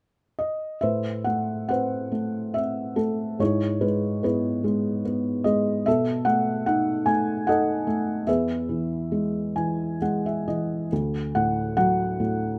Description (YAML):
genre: classical, lyrical solo piano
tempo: 64-76 BPM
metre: 3/4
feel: rubato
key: E major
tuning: A4 = 439 Hz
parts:
  - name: felt-muted upright piano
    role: solo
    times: 0.4-12.6 s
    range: D2 to G#5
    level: -25 LUFS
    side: equal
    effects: none
room: light reverb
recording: none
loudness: -25 LUFS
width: mono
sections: 0.8-10.9 A section; 10.9-12.6 B section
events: felt piano fill 9.1-10.9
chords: 0.0 N.C.; 0.8 Amadd9; 3.4 E/G#; 5.9 B7; 8.3 E; 10.9 D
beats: | 0.82 1.68 2.54 | 3.40 4.23 5.05 | 5.86 6.67 7.47 | 8.28 9.12 10.01 | 10.91 11.77